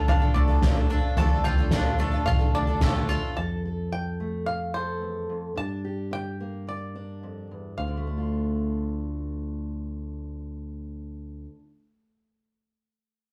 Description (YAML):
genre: indie folk with a building arrangement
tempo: 109 BPM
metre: 4/4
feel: straight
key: D minor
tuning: A4 = 440 Hz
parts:
  - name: bluegrass banjo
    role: melody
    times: 0.0-11.4 s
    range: C5 to A5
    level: -36 LUFS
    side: equal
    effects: none
  - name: picked twelve-string acoustic guitar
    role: accompaniment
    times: 0.0-3.4 s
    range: D3 to A4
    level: -32 LUFS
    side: equal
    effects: none
  - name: bowl-back mandolin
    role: arpeggios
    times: 0.0-3.4 s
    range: A3 to F4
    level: -35 LUFS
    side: equal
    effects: none
  - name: fingered electric bass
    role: bass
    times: 0.0-11.5 s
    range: A1 to G2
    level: -34 LUFS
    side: equal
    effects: none
  - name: soft-mallet drum kit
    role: drums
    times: 0.1-2.9 s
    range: kick drum, snare drum, toms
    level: -26 LUFS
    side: equal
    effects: none
  - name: fingerpicked steel-string acoustic guitar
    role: accompaniment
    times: 3.4-11.7 s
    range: D2 to A4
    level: -37 LUFS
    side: equal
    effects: none
room: moderate studio reverb, RT60 0.6 s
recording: rough rehearsal-room recording, warm saturation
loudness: -27 LUFS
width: mono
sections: 0.0-3.4 A section; 3.4-7.8 B section; 7.8-10.0 C section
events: none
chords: 0.0 Dm; 3.4 F; 5.6 Gm; 7.8 Dm